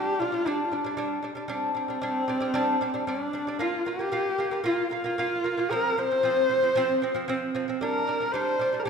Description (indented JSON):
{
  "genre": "mongolian traditional, Mongolian folk",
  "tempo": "114 BPM",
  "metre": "4/4",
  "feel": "straight",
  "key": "G yu mode",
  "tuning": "A4 = 440 Hz",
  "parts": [
    { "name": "warm horsehead fiddle", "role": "melody", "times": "0.0-8.9 s", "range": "C4 to C5", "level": "-26 LUFS", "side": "left 1 dB", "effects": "none" },
    { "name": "lute", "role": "arpeggios", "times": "0.0-8.9 s", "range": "F3 to F4", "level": "-29 LUFS", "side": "right 1 dB", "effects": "none" }
  ],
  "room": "moderate scoring stage reverb, RT60 1.9 s",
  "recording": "minimal, uncompressed stereo recording",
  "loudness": "-24 LUFS",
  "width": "side -6 dB against mid",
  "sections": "0.0-8.9 A section",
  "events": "none",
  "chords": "0.0 G5; 3.6 Bb5; 5.7 F5; 7.8 G5"
}